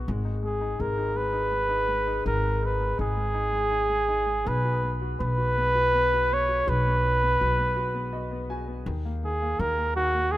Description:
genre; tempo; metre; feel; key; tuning
six-eight pop ballad; 55 BPM (dotted quarters); 6/8; straight; G# minor; A4 = 440 Hz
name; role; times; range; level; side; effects
clear upright piano; accompaniment; 0.0-10.4 s; D#3 to G#5; -34 LUFS; left 4 dB; none
upright bass; bass; 0.0-10.4 s; G#1 to D#2; -28 LUFS; equal; none
warm flugelhorn; melody; 0.4-10.4 s; F#4 to C#5; -25 LUFS; right 1 dB; digital delay
room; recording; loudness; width
small room reverb; rough home demo mix; -23 LUFS; side -15 dB against mid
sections
0.0-10.4 A section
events
upright piano fill 7.8-8.9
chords
0.1 G#m; 4.5 B5; 8.9 D#m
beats
| 0.08 1.17 | 2.27 3.37 | 4.47 5.58 | 6.68 7.78 | 8.87 9.97

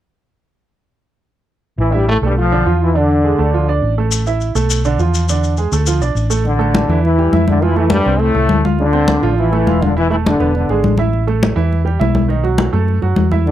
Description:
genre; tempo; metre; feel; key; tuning
latin, salsa; 206 BPM; 4/4; straight; A minor; A4 = 440 Hz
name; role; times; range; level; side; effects
bright trombone section; melody; 1.8-3.8, 6.5-11.0, 13.5 s; G2 to F4; -16 LUFS; left 2 dB; none
hollow-body short-scale fingered electric bass; bass; 1.8-13.5 s; E1 to F#2; -16 LUFS; equal; none
bright upright piano; accompaniment; 1.9-13.5 s; D3 to F5; -19 LUFS; right 8 dB; none
maracas; percussion; 4.1-6.5 s; none; -24 LUFS; left 8 dB; none
congas; percussion; 6.5-13.5 s; none; -19 LUFS; left 3 dB; none
room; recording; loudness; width
little or no reverb; dry, close 1970s-style studio recording; -12 LUFS; side -12 dB against mid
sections
1.8-6.5 A section; 6.5-13.5 B section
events
none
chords
1.8 A5; 2.4 Bm7b5; 3.0 E7; 3.5 Dm; 4.1 A5; 4.7 Bm7b5; 5.3 E7; 5.9 Dm; 6.5 A5; 7.6 Fmaj7; 8.8 Dm7; 10.0 E7sus4; 10.5 E7; 11.1 A5; 12.3 B7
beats
| 1.78 2.07 2.37 2.66 | 2.95 3.24 3.53 3.83 | 4.12 4.41 4.70 4.99 | 5.29 5.58 5.87 6.16 | 6.45 6.75 7.04 7.33 | 7.62 7.91 8.21 8.50 | 8.79 9.08 9.37 9.66 | 9.96 10.25 10.54 10.83 | 11.12 11.42 11.71 12.00 | 12.29 12.59 12.88 13.17 | 13.46

